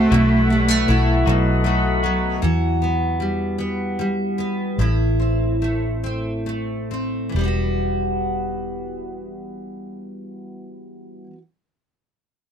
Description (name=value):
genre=pop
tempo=44-52 BPM (dotted quarters)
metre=6/8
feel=straight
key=E minor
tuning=A4 = 442 Hz
part: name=dark cello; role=melody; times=0.0-1.6 s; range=A3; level=-20 LUFS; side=right 1 dB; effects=none
part: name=picked steel-string acoustic guitar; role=accompaniment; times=0.0-11.4 s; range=A2 to A4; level=-23 LUFS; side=equal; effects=double-tracked left and right
part: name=tonewheel organ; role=sustained chords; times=0.0-2.4 s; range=A4 to B5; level=-24 LUFS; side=equal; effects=slow rotary speaker
part: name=direct-recorded clean electric guitar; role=arpeggios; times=0.0-2.4 s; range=B2 to A4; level=-27 LUFS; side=left 14 dB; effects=vibrato effect
part: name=vintage muted fingered electric bass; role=bass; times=0.0-11.2 s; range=E1 to E2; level=-22 LUFS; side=equal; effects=none
room=little or no reverb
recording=dry, close 1970s-style studio recording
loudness=-18 LUFS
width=side -8 dB against mid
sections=0.0-2.4 A section; 2.4-7.3 B section; 7.3-10.0 C section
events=slowing down 2.4-7.3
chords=0.1 B7sus4; 1.3 B7; 2.4 Emadd9; 4.8 Am; 7.3 Emadd9